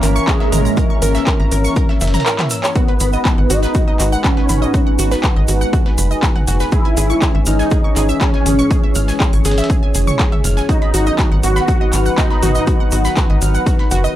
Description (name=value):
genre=melodic techno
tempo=121 BPM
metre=4/4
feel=straight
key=G# minor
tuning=A4 = 442 Hz
part: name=wide unison lead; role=melody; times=0.0-13.1 s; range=G#3 to F#4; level=-21 LUFS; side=equal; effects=ensemble chorus, sidechain pumping, tape echo
part: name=dark analog pad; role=sustained chords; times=0.0-14.2 s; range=D#3 to C#5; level=-25 LUFS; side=left 1 dB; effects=chorus, sidechain pumping
part: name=wide unison pluck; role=arpeggios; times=0.0-14.1 s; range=F#4 to E#6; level=-23 LUFS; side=right 1 dB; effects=sidechain pumping, analog delay
part: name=tight sequencer bass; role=bass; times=0.0-14.1 s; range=F#1 to G#1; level=-16 LUFS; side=equal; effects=sidechain pumping
part: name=dusty soul sampler-style drum kit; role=drums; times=0.0-14.0 s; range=hi-hat, snare drum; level=-33 LUFS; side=equal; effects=sidechain pumping on hats, high-pass filter on hats, studio reverb, high-pass filter on snare
part: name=techno drum kit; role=drums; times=0.0-14.0 s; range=handclaps, hi-hat, toms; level=-22 LUFS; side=equal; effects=overdrive, studio reverb
part: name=tube shaker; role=percussion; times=0.0-14.1 s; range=none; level=-29 LUFS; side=right 2 dB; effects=none
part: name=warbly tape-like pad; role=texture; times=0.0-14.2 s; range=C#4 to B5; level=-24 LUFS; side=equal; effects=chorus, built-in reverb, sidechain pumping
part: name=electronic kick drum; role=drums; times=0.3-13.8 s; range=none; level=-16 LUFS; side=equal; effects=overdrive, studio reverb
room=little or no reverb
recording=dry, gritty hardware recording, transformer saturation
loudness=-12 LUFS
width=side -13 dB against mid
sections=0.0-14.2 A section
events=drum fill 2.4-2.8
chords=0.0 A#dim/G#; 2.8 G#m7; 6.7 C#m/G#; 10.7 B/G#